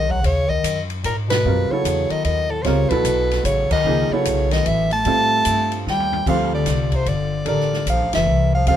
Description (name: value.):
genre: modal jazz.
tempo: 150 BPM.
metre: 3/4.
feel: swing 64% on 8ths.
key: unclear.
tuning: A4 = 440 Hz.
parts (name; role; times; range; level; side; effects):
warm soprano saxophone; melody; 0.0-8.8 s; A4 to A5; -21 LUFS; equal; none.
mellow bass clarinet; second line; 0.0-8.8 s; A2 to A3; -24 LUFS; left 4 dB; none.
warm concert grand piano; accompaniment; 0.0-8.8 s; E#3 to B4; -25 LUFS; right 5 dB; none.
upright bass; bass; 0.0-8.8 s; F1 to A2; -23 LUFS; equal; none.
open jazz drum kit; drums; 0.1-8.8 s; crash cymbal, hi-hat, kick drum, ride cymbal, snare drum, toms; -28 LUFS; equal; none.
room: light reverb.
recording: minimal, uncompressed stereo recording.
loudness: -17 LUFS.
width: side -10 dB against mid.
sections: 0.0-6.3 A section; 6.3-8.8 B section.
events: band accent 1.2, 3.7, 8.1; drum fill 5.9-6.3.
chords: 0.0 G#m7; 1.4 F#m7; 5.1 F9; 6.3 Dm11.